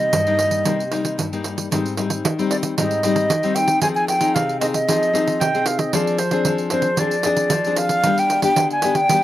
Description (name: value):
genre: samba and choro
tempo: 114 BPM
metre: 4/4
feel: straight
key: unclear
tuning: A4 = 442 Hz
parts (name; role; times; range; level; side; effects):
- bright baroque flute; melody; 0.0-9.2 s; C5 to Ab5; -19 LUFS; right 1 dB; slapback echo
- nylon-string guitar; accompaniment; 0.0-9.2 s; G2 to Ab4; -22 LUFS; left 4 dB; slapback echo
- pandeiro; percussion; 0.1-9.2 s; none; -23 LUFS; right 4 dB; none
- mellow clarinet; second line; 5.4-6.6 s; C5 to G5; -23 LUFS; right 4 dB; slapback echo
room: little or no reverb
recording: recorded outdoors, with no room sound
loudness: -17 LUFS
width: side -14 dB against mid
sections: 0.0-1.7 A section; 1.7-9.2 B section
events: none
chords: 0.0 Cm7; 1.7 Abmaj7; 3.8 Fm7; 5.9 Dm7b5/F; 8.0 G